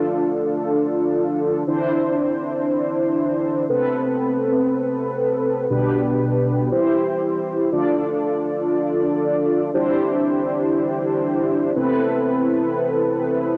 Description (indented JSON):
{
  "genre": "pop",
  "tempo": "free time",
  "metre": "none",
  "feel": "none",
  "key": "D dorian",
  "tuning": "A4 = 441 Hz",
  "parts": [
    { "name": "mellow synth brass", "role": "solo", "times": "0.0-13.6 s", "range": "B2 to D5", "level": "-21 LUFS", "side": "equal", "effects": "chorus" }
  ],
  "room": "moderate lush hall reverb, RT60 2.7 s",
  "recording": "home recording on cassette",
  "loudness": "-21 LUFS",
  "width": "mono",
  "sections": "0.0-7.7 A section; 7.7-13.6 B section",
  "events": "none",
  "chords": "0.0 Dm; 1.7 Cadd9; 3.7 Amadd9; 5.7 G/B; 6.7 C; 7.7 Dm; 9.7 Cadd9; 11.8 Amadd9"
}